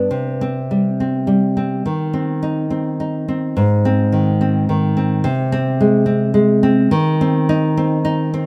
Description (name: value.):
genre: romantic piece for solo classical guitar.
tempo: 106 BPM.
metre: 3/4.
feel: rubato.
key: C minor.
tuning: A4 = 440 Hz.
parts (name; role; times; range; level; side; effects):
nylon-string guitar; solo; 0.0-8.5 s; Ab2 to Eb4; -17 LUFS; equal; none.
room: moderate plate reverb, RT60 3.7 s.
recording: none.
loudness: -17 LUFS.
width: mono.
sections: 0.1-8.5 A section.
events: none.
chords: 0.1 C5; 1.9 Cm/Eb; 3.6 Ab; 5.2 Ab/C; 6.9 Cm/Eb.